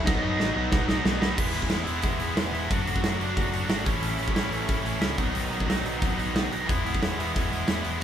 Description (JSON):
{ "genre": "punk rock", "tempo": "181 BPM", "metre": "4/4", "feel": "straight", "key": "E major", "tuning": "A4 = 440 Hz", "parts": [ { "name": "lightly driven lead guitar", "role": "melody", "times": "0.0-1.0 s", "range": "D#4 to D#5", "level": "-31 LUFS", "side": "equal", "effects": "none" }, { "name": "distorted electric guitar", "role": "riff", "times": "0.0-8.0 s", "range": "A2 to F#4", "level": "-29 LUFS", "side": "equal", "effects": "overdrive" }, { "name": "cranked stack guitar", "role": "riff", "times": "0.1-8.0 s", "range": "A2 to F#4", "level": "-31 LUFS", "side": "equal", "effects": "overdrive" }, { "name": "overdriven picked electric bass", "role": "bass", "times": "0.1-8.0 s", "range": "E1 to F#2", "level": "-32 LUFS", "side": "equal", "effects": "none" }, { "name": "big rock drum kit", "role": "drums", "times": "0.1-7.9 s", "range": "crash cymbal, hi-hat, kick drum, snare drum", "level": "-27 LUFS", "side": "equal", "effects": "none" } ], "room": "light reverb", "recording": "band playing live in one room", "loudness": "-24 LUFS", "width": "side -9 dB against mid", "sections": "0.0-1.4 A section; 1.4-8.0 B section", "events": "drum fill 0.1-1.4", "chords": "0.1 B; 1.4 E; 2.7 D/F#; 3.9 A; 5.2 B; 6.7 E" }